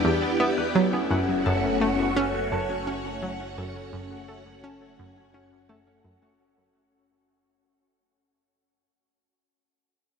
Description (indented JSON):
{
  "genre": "ambient, sequencer-driven space music",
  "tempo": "85 BPM",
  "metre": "4/4",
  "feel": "straight",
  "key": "unclear",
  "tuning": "A4 = 441 Hz",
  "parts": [
    { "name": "phased string machine", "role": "sustained chords", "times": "0.0-6.4 s", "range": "A3 to G5", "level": "-28 LUFS", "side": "equal", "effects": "ensemble chorus, phaser" },
    { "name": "concert harp", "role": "arpeggios", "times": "0.0-8.8 s", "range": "C#4 to A5", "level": "-30 LUFS", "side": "left 3 dB", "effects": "auto-pan, analog delay" },
    { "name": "analog pluck", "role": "riff", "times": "0.0-6.2 s", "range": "E2 to C#4", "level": "-26 LUFS", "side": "right 2 dB", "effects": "chorus, analog delay" },
    { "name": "analog drone", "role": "bass", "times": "0.0-6.4 s", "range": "F#1 to E2", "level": "-39 LUFS", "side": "equal", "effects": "chorus" }
  ],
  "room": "moderate huge ambient reverb, RT60 9.0 s",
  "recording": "none",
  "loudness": "-23 LUFS",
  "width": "side -6 dB against mid",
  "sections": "0.0-6.4 A section",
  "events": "fade-out 0.0-6.4",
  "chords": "0.0 Em7; 0.8 F#m"
}